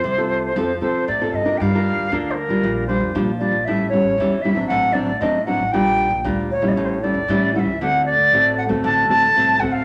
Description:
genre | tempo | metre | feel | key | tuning
samba and choro | 116 BPM | 4/4 | straight | G minor | A4 = 440 Hz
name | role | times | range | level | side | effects
bright wooden flute | melody | 0.0-9.8 s | Bb4 to A5 | -21 LUFS | equal | none
nylon-string guitar | accompaniment | 0.0-9.8 s | A2 to Bb4 | -23 LUFS | equal | none
upright bass | bass | 0.0-9.8 s | A1 to C3 | -30 LUFS | equal | none
room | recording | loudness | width
moderate large studio reverb, RT60 1.2 s | none | -19 LUFS | mono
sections
0.0-1.6 A section; 1.6-9.8 B section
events
none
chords
0.0 F; 1.6 Gm7; 2.6 Bb6; 3.7 A7; 4.7 D7/A; 5.7 Gm7/Bb; 6.8 A7; 7.8 D7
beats
0.04 0.55 1.07 | 1.59 2.11 2.63 3.14 | 3.66 4.18 4.70 5.21 | 5.73 6.25 6.77 7.29 | 7.80 8.32 8.84 9.36

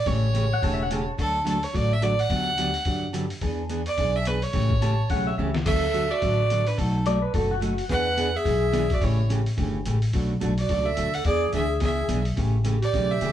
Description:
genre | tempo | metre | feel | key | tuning
country, western swing | 215 BPM | 4/4 | swing 59% on 8ths | unclear | A4 = 440 Hz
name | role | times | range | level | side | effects
clear fiddle | melody | 0.0-13.3 s | A4 to F#5 | -27 LUFS | right 3 dB | none
picked steel-string acoustic guitar | accompaniment | 0.1-13.3 s | B2 to A4 | -29 LUFS | right 1 dB | none
upright bass | bass | 0.1-13.3 s | E1 to G2 | -26 LUFS | left 1 dB | none
trip hop sampler-style drum kit | drums | 0.1-13.3 s | crash cymbal, hi-hat, kick drum, snare drum | -30 LUFS | left 1 dB | none
pedal steel guitar | second line | 0.5-1.1, 4.8-7.8 s | F#4 to A5 | -29 LUFS | left 3 dB | none
breathy clarinet | second line | 5.7-13.3 s | D4 to B4 | -29 LUFS | left 1 dB | none
room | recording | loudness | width
moderate studio reverb, RT60 0.7 s | band playing live in one room | -22 LUFS | side -11 dB against mid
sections
0.0-13.3 A section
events
drum fill 5.4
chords
0.1 A7; 1.2 D; 2.3 Gmaj7/D; 3.4 E7; 4.5 A7; 5.7 D6; 6.8 B7; 7.9 E7; 9.0 A7; 10.1 Bm7; 11.3 E7; 12.4 A7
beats
| 0.07 0.35 0.63 0.91 | 1.19 1.47 1.75 2.02 | 2.31 2.58 2.86 3.14 | 3.42 3.70 3.98 4.26 | 4.54 4.82 5.10 5.38 | 5.66 5.94 6.22 6.50 | 6.78 7.06 7.34 7.62 | 7.90 8.18 8.46 8.74 | 9.02 9.30 9.58 9.86 | 10.14 10.42 10.70 10.98 | 11.26 11.54 11.81 12.09 | 12.37 12.65 12.93 13.21

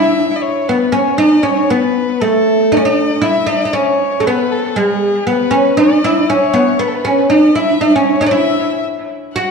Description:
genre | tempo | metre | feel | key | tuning
Arabic maqam ensemble | 118 BPM | 4/4 | straight | E maqam rast | A4 = 441 Hz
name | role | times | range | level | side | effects
oud | melody | 0.0-9.5 s | G#3-50c to F#4 | -12 LUFS | equal | tape echo
rich violin | second line | 0.0-9.5 s | G#4-40c to F#5 | -19 LUFS | left 3 dB | none
room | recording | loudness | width
wet recital hall reverb, RT60 1.5 s | dark, warm production | -11 LUFS | side -5 dB against mid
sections
0.0-9.3 A section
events
none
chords
none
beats
0.18 0.69 | 1.20 1.70 2.21 2.72 | 3.23 3.74 4.25 4.75 | 5.26 5.77 6.28 6.79 | 7.30 7.81 8.32 8.82 | 9.33

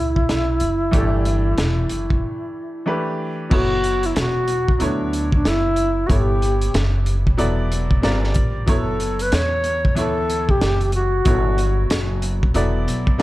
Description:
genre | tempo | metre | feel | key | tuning
hip hop, jazz-hop | 93 BPM | 4/4 | swing 62% on 16ths | E dorian | A4 = 440 Hz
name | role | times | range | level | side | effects
bright reedy wooden-headed alto flute | melody | 0.0-12.2 s | D4 to C#5 | -22 LUFS | equal | tape echo
bright upright piano | accompaniment | 0.0-13.2 s | E3 to D5 | -26 LUFS | equal | none
upright bass | bass | 0.0-13.2 s | E1 to E2 | -22 LUFS | equal | none
crunchy breakbeat drum kit | drums | 0.2-13.2 s | crash cymbal, hi-hat, kick drum, snare drum | -21 LUFS | equal | none
room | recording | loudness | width
studio ambience | dark, warm production | -17 LUFS | side -17 dB against mid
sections
0.0-3.5 A section; 3.5-13.2 B section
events
break 2.2-3.5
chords
0.0 Em9; 2.9 Em7; 3.5 F#m7; 4.8 Dmaj9; 6.1 Gmaj9#11; 7.4 Esus2; 8.0 Gm7; 8.7 F#m7; 10.0 Dmaj9; 11.3 Gmaj9#11; 12.5 Esus2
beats
0.29 | 0.93 1.58 2.22 2.87 | 3.51 4.16 4.80 5.45 | 6.09 6.74 7.38 8.03 | 8.68 9.32 9.96 10.61 | 11.26 11.90 12.55 13.19

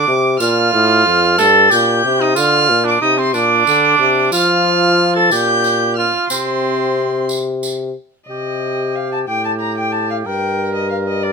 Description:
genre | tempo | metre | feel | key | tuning
classical, renaissance-style consort dance | 61 BPM (dotted quarters) | 6/8 | straight | C dorian | A4 = 440 Hz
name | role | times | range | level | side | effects
dark violin | melody | 0.0-11.3 s | D5 to A6 | -16 LUFS | left 1 dB | none
clear cor anglais | second line | 0.0-11.3 s | C4 to Bb4 | -18 LUFS | right 5 dB | none
warm trombone | bass | 0.0-11.3 s | F2 to F3 | -18 LUFS | left 2 dB | none
tambourine | percussion | 0.4-7.9 s | none | -23 LUFS | right 2 dB | none
room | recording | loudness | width
light reverb | close, detailed microphones | -12 LUFS | side -4 dB against mid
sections
0.0-8.3 A section; 8.3-11.3 B section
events
none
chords
0.0 Bb; 1.4 Gm; 2.4 Bb; 4.3 F; 5.3 Gm7/Bb; 6.3 N.C.; 8.3 Cm; 10.3 Gm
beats
| 0.41 1.39 | 2.36 3.34 | 4.33 5.31 | 6.30 7.29 | 8.29 9.27 | 10.26 11.23

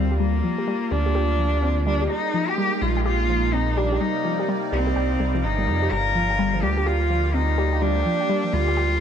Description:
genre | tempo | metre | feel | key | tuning
IDM | 126 BPM | 4/4 | swing 62% on 16ths | G phrygian | A4 = 438 Hz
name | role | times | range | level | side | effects
warm cello | melody | 0.0-9.0 s | Bb3 to Bb4 | -24 LUFS | equal | tape echo
phased analog pad | sustained chords | 0.0-9.0 s | C3 to D5 | -28 LUFS | right 2 dB | phaser, chorus, vintage 12-bit sampler grit
warbly dusty pluck | arpeggios | 0.0-8.9 s | F3 to G4 | -27 LUFS | left 2 dB | chorus, cassette tape, ping-pong delay
dark detuned saw bass | bass | 0.0-9.0 s | G1 to F2 | -23 LUFS | equal | none
room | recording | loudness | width
light reverb | none | -20 LUFS | side -8 dB against mid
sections
0.0-9.0 A section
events
none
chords
0.0 Gm7; 2.1 Bb7sus4; 4.0 Cm7; 5.9 Gm7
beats
| 0.20 0.68 1.15 1.63 | 2.10 2.58 3.06 3.53 | 4.01 4.48 4.96 5.44 | 5.91 6.39 6.87 7.34 | 7.82 8.29 8.77

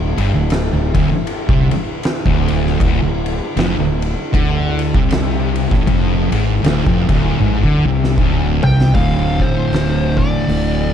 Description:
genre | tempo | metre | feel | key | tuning
stoner and doom metal | 78 BPM | 4/4 | swing 58% on 8ths | D minor | A4 = 444 Hz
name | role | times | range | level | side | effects
soft string machine | sustained chords | 0.0-10.9 s | D3 to A4 | -29 LUFS | equal | ensemble chorus
thick fuzz guitar | riff | 0.0-10.9 s | D2 to D3 | -20 LUFS | left 9 dB | distortion
thick fuzz guitar | riff | 0.0-10.9 s | D2 to D3 | -20 LUFS | right 9 dB | distortion
fuzz fingered electric bass | bass | 0.0-10.9 s | D1 to D2 | -20 LUFS | equal | overdrive
oversized low-tuned drum kit | drums | 0.2-10.7 s | hi-hat, kick drum, ride cymbal, snare drum, toms | -19 LUFS | equal | none
fuzz lead guitar | melody | 8.6-10.9 s | C5 to G5 | -23 LUFS | right 1 dB | wah, distortion, digital delay
room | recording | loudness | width
small room ambience | dark, warm production | -13 LUFS | side -9 dB against mid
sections
0.0-8.9 A section; 8.9-10.9 B section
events
drum fill 7.4-8.9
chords
0.0 Dm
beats
0.49 1.26 2.03 | 2.80 3.57 4.34 5.11 | 5.87 6.64 7.41 8.18 | 8.95 9.72 10.49

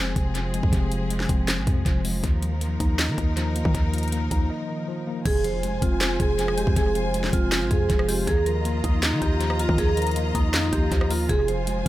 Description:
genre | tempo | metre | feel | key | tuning
hip hop, trap | 159 BPM | 4/4 | half-time | F minor | A4 = 441 Hz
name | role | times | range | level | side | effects
mellow tine electric piano | accompaniment | 0.0-11.9 s | C3 to Eb5 | -29 LUFS | left 1 dB | medium stereo tremolo, tape echo
warm studio string section | sustained chords | 0.0-11.9 s | F3 to Bb5 | -32 LUFS | left 1 dB | none
warm 808-style bass | bass | 0.0-11.9 s | F1 to Eb3 | -26 LUFS | equal | none
trap drum kit | drums | 0.2-11.9 s | crash cymbal, handclaps, hi-hat, kick drum, rim click, snare drum | -24 LUFS | equal | tape echo
vibraphone with medium hard mallets | melody | 5.3-11.9 s | Eb4 to C5 | -26 LUFS | right 2 dB | tape echo
impact | sound effects | 5.3-6.8 s | none | -39 LUFS | equal | none
room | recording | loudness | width
little or no reverb | echo-heavy mix | -21 LUFS | side -15 dB against mid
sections
0.0-5.3 A section; 5.3-11.9 B section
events
break 4.5-5.3; impact 5.3-6.8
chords
0.0 Fm; 2.2 Ebsus2; 5.3 Fm; 8.3 Ebsus2; 11.3 Fm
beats
0.35 | 0.73 1.10 1.48 1.86 | 2.24 2.61 2.99 3.37 | 3.75 4.12 4.50 4.88 | 5.25 5.63 6.01 6.39 | 6.76 7.14 7.52 7.90 | 8.27 8.65 9.03 9.41 | 9.78 10.16 10.54 10.92 | 11.29 11.67

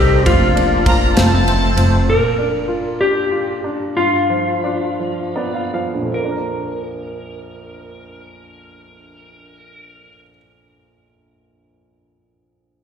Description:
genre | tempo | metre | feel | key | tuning
six-eight pop ballad | 49-66 BPM (dotted quarters) | 6/8 | straight | Bb major | A4 = 440 Hz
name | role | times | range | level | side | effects
clean lap steel guitar | melody | 0.0-10.2 s | F4 to Bb4 | -20 LUFS | left 2 dB | slapback echo, ping-pong delay
clear baby grand piano | accompaniment | 0.0-12.8 s | Bb1 to F5 | -22 LUFS | right 2 dB | slapback echo
overdriven tonewheel organ | sustained chords | 0.0-2.1 s | F3 to Eb4 | -21 LUFS | equal | chorus vibrato, slow rotary speaker
upright bass | bass | 0.0-2.1 s | F1 to C2 | -15 LUFS | equal | none
modern studio drum kit | drums | 0.3-1.9 s | kick drum, ride cymbal, snare drum | -19 LUFS | equal | none
warm studio violin section | second line | 0.9-2.0 s | A5 to Bb5 | -21 LUFS | equal | slapback echo
room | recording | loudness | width
light reverb | live gig heard through the venue's PA, recital hall reverb | -15 LUFS | side -8 dB against mid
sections
0.0-2.1 A section; 2.1-6.1 B section; 6.1-11.0 C section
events
slowing down 2.1-6.1; grand piano fill 5.0-6.1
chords
0.3 Bb/F; 1.2 F; 2.1 Bb; 4.0 G7; 6.1 Bb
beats
| 0.26 1.16 | 2.07 2.99 | 3.95 4.99 | 6.13 7.35 | 8.57 9.78

